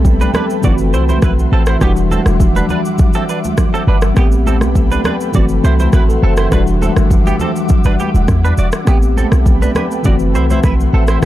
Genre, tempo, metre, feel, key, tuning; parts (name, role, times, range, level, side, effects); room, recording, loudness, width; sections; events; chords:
afrobeats; 102 BPM; 4/4; straight; E minor; A4 = 441 Hz
tine electric piano; accompaniment; 0.0-11.3 s; E3 to C5; -18 LUFS; left 1 dB; medium stereo tremolo
ethereal airy pad; sustained chords; 0.0-11.3 s; G3 to D6; -23 LUFS; left 2 dB; ensemble chorus, built-in reverb
warm 808-style bass; bass; 0.0-11.3 s; E1 to E2; -13 LUFS; equal
afro-pop drum kit; drums; 0.0-11.3 s; kick drum, rim click, shaker; -15 LUFS; equal; overdrive
congas; percussion; 0.1-10.8 s; -22 LUFS; right 2 dB
direct-recorded clean electric guitar; riff; 0.2-11.2 s; B3 to D5; -22 LUFS; right 4 dB; ensemble chorus, digital delay
little or no reverb; dark, warm production; -11 LUFS; side -14 dB against mid
0.0-11.3 A section
0.0 Am9; 0.6 F#m7b5; 1.8 Em9; 4.2 Am9; 5.3 F#m7b5; 6.5 Em9; 8.9 Am9; 10.1 F#m7b5